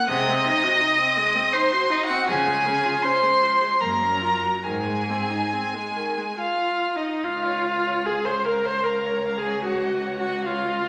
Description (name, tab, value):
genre	classical, slow romantic movement for string quartet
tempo	67-84 BPM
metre	3/4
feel	rubato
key	Db major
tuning	A4 = 442 Hz
part	rich violin	melody	0.0-10.9 s	Eb5 to Eb6	-26 LUFS	equal	none
part	rich violin	second line	0.0-10.9 s	Eb4 to F5	-28 LUFS	equal	none
part	rich viola	accompaniment	0.0-10.9 s	Eb3 to C5	-29 LUFS	equal	none
part	rich cello	bass	0.1-10.9 s	Db2 to Db3	-33 LUFS	equal	none
room	wet recital hall reverb, RT60 1.6 s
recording	none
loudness	-23 LUFS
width	mono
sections	0.0-7.3 A section; 7.3-10.9 B section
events	none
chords	0.1 Ab7/C; 2.3 Db; 3.8 Gbmaj7; 4.7 Ab; 7.3 Db; 9.7 Dbadd11